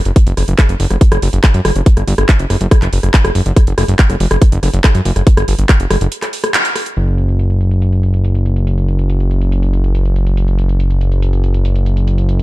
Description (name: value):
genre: psychedelic trance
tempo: 141 BPM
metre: 4/4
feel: straight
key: unclear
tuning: A4 = 439 Hz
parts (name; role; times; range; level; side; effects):
- fat analog bass; bass; 0.1-12.4 s; F#1 to F#2; -13 LUFS; equal; tube saturation
- techno drum kit; drums; 0.1-12.4 s; handclaps, hi-hat, rim click; -18 LUFS; equal; low-pass filter on snare, low-pass filter on hats, low-pass filter on room
- electronic kick drum; drums; 0.2-5.8 s; none; -8 LUFS; equal; none
room: little or no reverb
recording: dark, warm production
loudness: -11 LUFS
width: side -18 dB against mid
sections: 0.0-7.0 A section; 7.0-12.4 B section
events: drop 0.0-7.0; break 6.1-7.0; band accent 6.5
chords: none